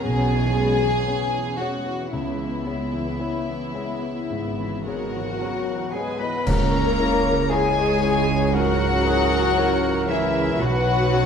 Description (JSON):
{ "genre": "cinematic, emotional film score for orchestra", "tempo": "53-59 BPM", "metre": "4/4", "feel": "rubato", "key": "C# dorian", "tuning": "A4 = 440 Hz", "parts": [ { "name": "warm symphonic violin section", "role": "melody", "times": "0.0-11.3 s", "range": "E5 to B5", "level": "-29 LUFS", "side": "left 6 dB", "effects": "none" }, { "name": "warm studio violin section", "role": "second line", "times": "0.0-11.3 s", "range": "E4 to D#5", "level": "-28 LUFS", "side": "left 3 dB", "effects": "none" }, { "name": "dark symphonic viola section", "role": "accompaniment", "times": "0.0-11.3 s", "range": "C#3 to B4", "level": "-30 LUFS", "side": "right 1 dB", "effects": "none" }, { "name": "warm grand piano", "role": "accompaniment", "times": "0.0-11.3 s", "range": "B1 to C#5", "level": "-29 LUFS", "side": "left 2 dB", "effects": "none" }, { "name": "warm symphonic cello section", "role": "bass", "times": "0.0-11.3 s", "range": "C#2 to C#3", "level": "-29 LUFS", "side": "right 5 dB", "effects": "none" }, { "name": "warm symphonic double bass section", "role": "bass", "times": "0.0-11.3 s", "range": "G#1 to C#2", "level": "-28 LUFS", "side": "right 4 dB", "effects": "none" }, { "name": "cymbal swell, clash cymbals and concert bass drum", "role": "percussion", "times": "2.1-8.5 s", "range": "none", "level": "-31 LUFS", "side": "right 1 dB", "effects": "none" }, { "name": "bright clarinet", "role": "second line", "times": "4.9-11.3 s", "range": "E4 to B4", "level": "-31 LUFS", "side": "equal", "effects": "none" }, { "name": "mellow hollow silver concert flute", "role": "second line", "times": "4.9-11.3 s", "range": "E5 to B5", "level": "-31 LUFS", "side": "left 2 dB", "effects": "none" }, { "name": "mellow French horn section", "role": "sustained chords", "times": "4.9-11.3 s", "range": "E3 to B3", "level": "-26 LUFS", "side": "left 3 dB", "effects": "none" }, { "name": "timpani", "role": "percussion", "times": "6.5-8.0 s", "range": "C#3", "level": "-30 LUFS", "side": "right 1 dB", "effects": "none" }, { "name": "mellow cor anglais", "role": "second line", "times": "8.5-11.3 s", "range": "G#4 to B4", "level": "-30 LUFS", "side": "right 3 dB", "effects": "none" } ], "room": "moderate scoring stage reverb, RT60 1.7 s", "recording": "dark, warm production", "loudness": "-20 LUFS", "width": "side -7 dB against mid", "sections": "0.0-6.5 A section; 6.5-11.3 B section", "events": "band accent 6.5-7.5", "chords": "0.0 E6; 2.1 C#m7; 6.5 C#m; 10.6 Bsus2" }